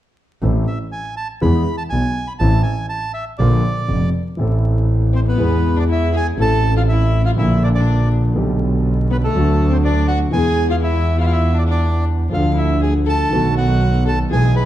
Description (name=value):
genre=tango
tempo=121 BPM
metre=4/4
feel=rubato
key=A harmonic minor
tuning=A4 = 440 Hz
part: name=warm concert grand piano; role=accompaniment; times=0.4-14.7 s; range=F1 to A4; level=-18 LUFS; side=equal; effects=none
part: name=bright double bass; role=bass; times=0.4-14.7 s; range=F1 to E2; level=-18 LUFS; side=right 1 dB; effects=none
part: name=bandoneon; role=melody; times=0.7-14.7 s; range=A4 to B5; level=-24 LUFS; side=right 2 dB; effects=none
part: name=warm violin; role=second line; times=5.1-14.7 s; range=A3 to B4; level=-25 LUFS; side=left 5 dB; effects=none
room=wet large studio reverb, RT60 1.2 s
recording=dark, warm production, vinyl crackle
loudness=-15 LUFS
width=side -13 dB against mid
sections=0.4-4.4 A section; 4.4-14.7 B section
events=none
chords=0.4 Am; 1.4 E; 2.4 Am; 3.4 Bb; 4.4 Am; 5.4 E; 6.4 Am; 7.4 Bb; 8.4 Gadd9/B; 9.3 D; 10.3 E; 12.3 Dm; 13.3 B7